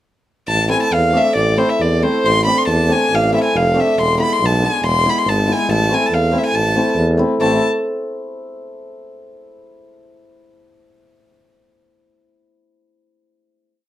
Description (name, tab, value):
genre	klezmer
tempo	139 BPM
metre	2/4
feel	straight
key	A harmonic minor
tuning	A4 = 439 Hz
part	warm violin	melody	0.5-7.6 s	C5 to C6	-17 LUFS	equal	none
part	clear tuba	bass	0.5-7.6 s	E1 to E2	-19 LUFS	equal	none
part	hammered dulcimer	accompaniment	0.7-7.6 s	G#3 to E4	-19 LUFS	equal	none
room	moderate small room ambience, RT60 0.5 s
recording	none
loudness	-13 LUFS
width	side -13 dB against mid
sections	0.5-7.4 A section; 7.4-8.3 final chord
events	none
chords	0.5 Am; 4.0 E; 5.7 Am